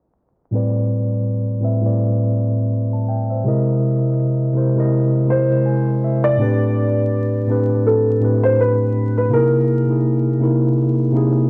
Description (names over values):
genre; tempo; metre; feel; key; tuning
hip hop; 82 BPM; 4/4; swing 56% on 16ths; unclear; A4 = 440 Hz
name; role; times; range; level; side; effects
mellow tine electric piano; accompaniment; 0.5-11.5 s; A2 to A5; -18 LUFS; equal; cassette tape, low-pass filter
dark upright piano; melody; 5.3-10.4 s; A4 to D5; -22 LUFS; equal; low-pass filter, cassette tape, plate reverb
room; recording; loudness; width
wet booth ambience, RT60 0.2 s; home recording on cassette, vinyl crackle, low-pass filter; -18 LUFS; mono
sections
0.5-6.4 A section; 6.4-11.5 B section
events
filter sweep 0.5-6.4; tine electric piano fill 5.3-6.4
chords
0.5 Am11; 3.5 C7alt; 6.4 Am11; 9.3 C7alt